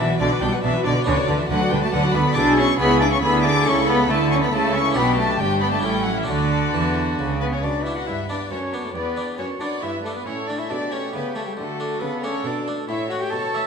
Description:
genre	classical, baroque-style concerto movement with solo episodes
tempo	138 BPM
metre	3/4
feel	straight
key	unclear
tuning	A4 = 440 Hz
part	dark cello	melody	0.0-13.7 s	C#3 to A4	-24 LUFS	left 1 dB	none
part	rich chamber violin section	melody	0.0-13.7 s	C#5 to D6	-27 LUFS	left 4 dB	none
part	warm chamber violin section	second line	0.0-13.7 s	E4 to A5	-27 LUFS	left 5 dB	none
part	dark chamber viola section	accompaniment	0.0-13.7 s	C#4 to E5	-28 LUFS	right 4 dB	none
part	harpsichord	accompaniment	0.0-13.7 s	E2 to A4	-30 LUFS	left 1 dB	none
part	rich chamber cello section	bass	0.0-13.7 s	E2 to E3	-27 LUFS	right 4 dB	none
part	warm chamber double bass section	bass	0.0-7.6 s	G1 to E2	-26 LUFS	right 4 dB	none
room	moderate recital hall reverb, RT60 1.5 s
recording	minimal, uncompressed stereo recording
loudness	-19 LUFS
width	side -6 dB against mid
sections	0.0-7.6 A section; 7.6-13.7 B section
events	none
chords	0.0 Bm; 1.1 Bm/D; 2.4 E7/B; 3.7 A/C#; 5.0 G/B; 5.8 A7; 6.3 D; 7.6 Bm; 9.0 Em7; 10.3 A7; 11.6 D; 12.9 A7

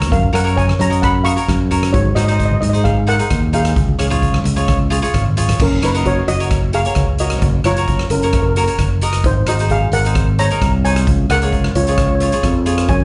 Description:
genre	calypso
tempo	131 BPM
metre	4/4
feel	straight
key	F# major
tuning	A4 = 438 Hz
part	cavaquinho	accompaniment	0.0-12.9 s	D#4 to D#5	-25 LUFS	equal	slapback echo
part	modern bright fingered electric bass	bass	0.0-13.0 s	F#1 to G#2	-19 LUFS	equal	none
part	street-band drum kit	drums	0.0-13.0 s	crash cymbal, hi-hat, kick drum, rim click	-22 LUFS	equal	none
part	congas	percussion	0.0-5.6, 13.0 s	none	-27 LUFS	equal	none
part	steel pan	melody	0.1-13.0 s	C#4 to C#6	-22 LUFS	equal	slapback echo
room	light reverb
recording	live gig heard through the venue's PA, club reverb, nothing above 10.9 kHz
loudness	-16 LUFS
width	mono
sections	0.0-5.6 A section; 5.6-13.0 A section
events	drum fill 5.2-5.6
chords	0.0 F#; 1.9 G#7; 3.8 C#; 5.6 F#; 9.2 G#7; 11.1 C#

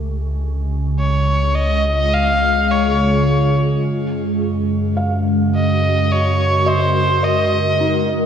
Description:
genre	ambient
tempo	53 BPM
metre	4/4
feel	straight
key	Db major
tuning	A4 = 444 Hz
part	glassy FM pad	sustained chords	0.0-8.3 s	Db3 to Bb4	-19 LUFS	equal	ensemble chorus, built-in reverb, phaser
part	warm sub bass	bass	0.0-8.3 s	Db2 to Gb2	-20 LUFS	equal	none
part	clear electric violin	melody	1.0-8.1 s	C5 to F5	-18 LUFS	equal	ping-pong delay
part	felt-muted upright piano	arpeggios	5.0-8.3 s	Eb4 to F5	-26 LUFS	right 1 dB	ping-pong delay
room	wet lush hall reverb, RT60 2.4 s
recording	worn, warbling old tape, cassette tape, warbly pitch drift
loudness	-15 LUFS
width	side -8 dB against mid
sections	0.0-8.3 A section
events	none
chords	0.0 Db; 3.8 Gbadd9

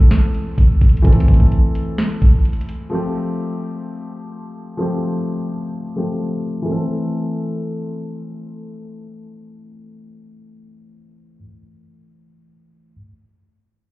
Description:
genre	hip hop, trap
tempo	128 BPM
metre	4/4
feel	half-time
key	A minor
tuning	A4 = 440 Hz
part	felt-muted upright piano	accompaniment	0.0-12.9 s	E3 to A4	-23 LUFS	left 1 dB	low-pass filter
part	trap drum kit	drums	0.1-2.8 s	hi-hat, kick drum, snare drum	-12 LUFS	equal	none
room	small room ambience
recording	heard muffled through a wall, club reverb, EQ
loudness	-16 LUFS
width	side -19 dB against mid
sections	0.0-6.7 A section; 6.7-10.4 B section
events	filter sweep on felt piano 0.0-6.7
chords	0.0 Am; 2.9 Fadd9; 6.7 Am

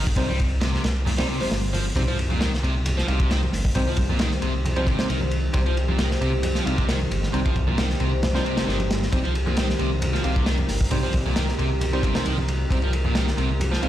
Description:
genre	breakbeat, breaks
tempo	134 BPM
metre	4/4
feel	swing 53% on 16ths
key	C minor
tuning	A4 = 440 Hz
part	overdriven electric guitar	riff	0.0-13.9 s	Bb2 to G3	-28 LUFS	equal	vintage 12-bit sampler grit, dub echo
part	dark detuned saw bass	bass	0.0-13.9 s	G1 to C2	-25 LUFS	equal	none
part	crunchy breakbeat drum kit	drums	0.1-13.9 s	hi-hat, kick drum, ride cymbal, snare drum	-26 LUFS	equal	none
part	tine electric piano	stabs	0.2-13.9 s	G3 to F5	-31 LUFS	right 1 dB	wide subtle chorus, dub echo
part	congas	percussion	0.3-13.7 s	none	-34 LUFS	right 1 dB	none
part	swell and sub drop	sound effects	1.3-3.8 s	none	-36 LUFS	equal	none
part	deep dark ambient pad	sustained chords	3.4-13.9 s	Eb3 to C5	-31 LUFS	equal	chorus, built-in reverb, sidechain pumping
room	light reverb, small room ambience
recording	played on a big sound system in a bare room, stone room reverb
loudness	-20 LUFS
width	side -12 dB against mid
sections	0.0-2.0 A section; 2.0-13.9 B section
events	drop 2.0-13.9; impact 2.0-3.8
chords	0.0 Cm

